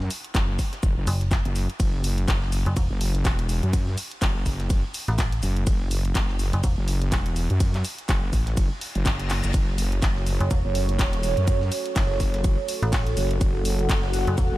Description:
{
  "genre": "bass house",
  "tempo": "124 BPM",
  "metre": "4/4",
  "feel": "swing 57% on 16ths",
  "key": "F# minor",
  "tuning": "A4 = 440 Hz",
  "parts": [
    { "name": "wobble bass", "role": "bass", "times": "0.0-14.6 s", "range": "E1 to F#2", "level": "-24 LUFS", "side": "equal", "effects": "chorus, overdrive, sidechain pumping" },
    { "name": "breakbeat sampler-style drum kit", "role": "drums", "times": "0.0-14.5 s", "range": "hi-hat, shaker, snare drum", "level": "-42 LUFS", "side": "left 2 dB", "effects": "none" },
    { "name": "garage drum kit", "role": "drums", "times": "0.1-14.5 s", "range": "handclaps, hi-hat, ride cymbal", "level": "-32 LUFS", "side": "equal", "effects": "studio reverb" },
    { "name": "electronic kick drum", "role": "drums", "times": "0.3-14.5 s", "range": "none", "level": "-24 LUFS", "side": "equal", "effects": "studio reverb" },
    { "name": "metallic FM bass", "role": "bass", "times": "1.1-6.8, 10.4-14.5 s", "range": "E1 to A1", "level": "-24 LUFS", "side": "equal", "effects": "tube saturation, sidechain pumping" },
    { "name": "reverse cymbal", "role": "sound effects", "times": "8.8-9.5 s", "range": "none", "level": "-40 LUFS", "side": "left 4 dB", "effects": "none" },
    { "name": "dark analog pad", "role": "sustained chords", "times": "9.9-14.6 s", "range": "F#4 to F#5", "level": "-28 LUFS", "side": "right 4 dB", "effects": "chorus, sidechain pumping" }
  ],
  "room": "digital ambience",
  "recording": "none",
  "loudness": "-21 LUFS",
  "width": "side -17 dB against mid",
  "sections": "0.0-14.6 A section",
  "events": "reverse cymbal 8.8-9.5; drum fill 9.3",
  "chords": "0.0 F#m"
}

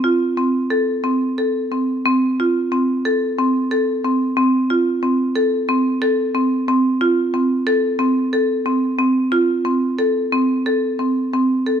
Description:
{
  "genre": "contemporary instrumental, contemporary",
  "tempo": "181 BPM (eighths)",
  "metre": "7/8",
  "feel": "straight",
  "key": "F major",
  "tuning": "A4 = 436 Hz",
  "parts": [
    { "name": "marimba with hard mallets", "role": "solo", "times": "0.0-11.8 s", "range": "C4 to A4", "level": "-16 LUFS", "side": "equal", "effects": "none" }
  ],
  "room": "moderate recital hall reverb, RT60 1.8 s",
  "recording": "close, detailed microphones",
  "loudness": "-16 LUFS",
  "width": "side -8 dB against mid",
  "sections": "0.0-11.3 A section",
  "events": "none",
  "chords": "none"
}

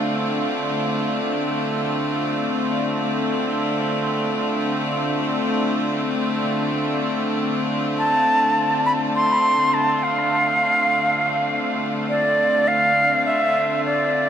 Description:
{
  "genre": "ambient",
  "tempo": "free time",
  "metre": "none",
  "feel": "none",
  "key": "D minor",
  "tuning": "A4 = 439 Hz",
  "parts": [
    { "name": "bright chamber string section", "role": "sustained chords", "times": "0.0-14.3 s", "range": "D3 to D5", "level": "-22 LUFS", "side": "equal", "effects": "none" },
    { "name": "silver concert flute", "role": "melody", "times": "8.0-14.3 s", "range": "D5 to C6", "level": "-17 LUFS", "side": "right 1 dB", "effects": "dub echo" }
  ],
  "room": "moderate echo chamber reverb, RT60 1.6 s",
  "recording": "echo-heavy mix, vinyl crackle",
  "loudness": "-18 LUFS",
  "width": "side -9 dB against mid",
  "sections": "0.0-14.3 A section",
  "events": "none",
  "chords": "0.0 Dm7"
}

